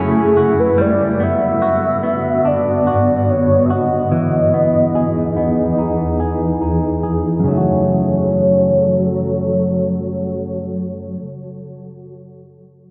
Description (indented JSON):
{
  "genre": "dream pop",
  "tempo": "72 BPM",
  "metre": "4/4",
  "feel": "straight",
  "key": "F# dorian",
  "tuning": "A4 = 440 Hz",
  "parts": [
    { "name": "warm velvety synth lead", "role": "melody", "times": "0.0-11.2 s", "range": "G#4 to E5", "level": "-20 LUFS", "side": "equal", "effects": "chorus, low-pass filter, delay" },
    { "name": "shimmering ambient pad", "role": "sustained chords", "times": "0.0-11.2 s", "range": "E2 to C#5", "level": "-21 LUFS", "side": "equal", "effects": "chorus, built-in reverb, low-pass filter" },
    { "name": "clean electric guitar", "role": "arpeggios", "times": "0.0-11.3 s", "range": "F#2 to G#4", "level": "-22 LUFS", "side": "equal", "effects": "lush chorus, low-pass filter, delay" }
  ],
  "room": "wet plate reverb, RT60 3.6 s",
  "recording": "dreamy mix soaked in reverb",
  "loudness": "-16 LUFS",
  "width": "mono",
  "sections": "0.0-7.5 A section; 7.5-10.8 B section",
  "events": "filter sweep 0.0-7.5",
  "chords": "0.0 F#m; 0.8 Gmaj7; 4.1 Emaj7; 7.5 F#m",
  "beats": "| 0.79 1.62 2.45 3.29 | 4.12 4.95 5.79 6.62 | 7.45 8.29 9.12 9.95"
}